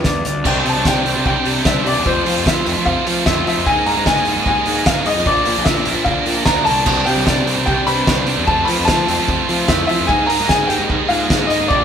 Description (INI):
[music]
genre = indie rock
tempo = 150 BPM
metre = 4/4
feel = straight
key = unclear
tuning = A4 = 437 Hz
[part]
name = bright upright piano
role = melody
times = 0.0-11.8 s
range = B4 to B5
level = -19 LUFS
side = left 2 dB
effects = none
[part]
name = fuzz guitar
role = riff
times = 0.0-11.8 s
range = G2 to Ab4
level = -23 LUFS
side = left 5 dB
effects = distortion
[part]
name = fuzz picked electric bass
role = bass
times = 0.0-11.8 s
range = Bb1 to F3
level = -22 LUFS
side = right 1 dB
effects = overdrive
[part]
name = loose indie drum kit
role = drums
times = 0.0-11.8 s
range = crash cymbal, hi-hat, kick drum, snare drum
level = -20 LUFS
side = equal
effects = none
[part]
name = scooped high-gain guitar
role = riff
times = 0.4-11.8 s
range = Bb2 to Ab4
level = -20 LUFS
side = right 7 dB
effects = distortion
[part]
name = overdriven combo organ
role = sustained chords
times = 0.5-11.8 s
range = Ab3 to Bb5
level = -31 LUFS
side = right 2 dB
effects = none
[part]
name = mellow tine electric piano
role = second line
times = 6.1-11.8 s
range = D4 to B4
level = -29 LUFS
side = right 4 dB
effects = none
[sound]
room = moderate stone room reverb, RT60 1.0 s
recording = band playing live in one room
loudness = -13 LUFS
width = side -8 dB against mid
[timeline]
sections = 0.5-11.8 A section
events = none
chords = 0.5 Csus2; 2.1 Fmaj7; 3.7 Absus2; 5.3 Bb; 6.9 Csus2; 8.5 Fmaj7; 10.1 Absus2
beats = 0.05 | 0.46 0.86 1.26 1.66 | 2.06 2.46 2.86 3.26 | 3.66 4.06 4.46 4.86 | 5.26 5.67 6.07 6.47 | 6.87 7.27 7.67 8.07 | 8.48 8.88 9.28 9.68 | 10.09 10.49 10.89 11.29 | 11.70